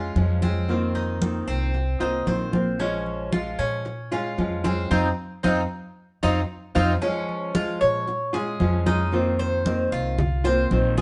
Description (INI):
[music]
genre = latin, Cuban son and guajira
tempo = 114 BPM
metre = 4/4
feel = straight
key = Bb minor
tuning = A4 = 440 Hz
[part]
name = nylon-string guitar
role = accompaniment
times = 0.0-11.0 s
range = Eb3 to F4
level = -29 LUFS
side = equal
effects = none
[part]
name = Cuban tres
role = arpeggios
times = 0.0-11.0 s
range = C4 to Db5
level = -30 LUFS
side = equal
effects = none
[part]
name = upright bass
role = bass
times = 0.0-11.0 s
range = Bb1 to Bb2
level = -29 LUFS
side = equal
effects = none
[part]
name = congas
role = percussion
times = 0.2-11.0 s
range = none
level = -30 LUFS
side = equal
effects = none
[sound]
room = light reverb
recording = band playing live in one room, nothing above 10.6 kHz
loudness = -24 LUFS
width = mono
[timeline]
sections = 0.0-7.0 A section; 7.0-11.0 B section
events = band accent 4.9-7.0; drum fill 6.2-7.0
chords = 0.0 Bbm7 (rootless); 0.7 F7sus4; 2.8 Bbm7; 4.9 F5; 7.0 Bbm7; 9.1 F7sus4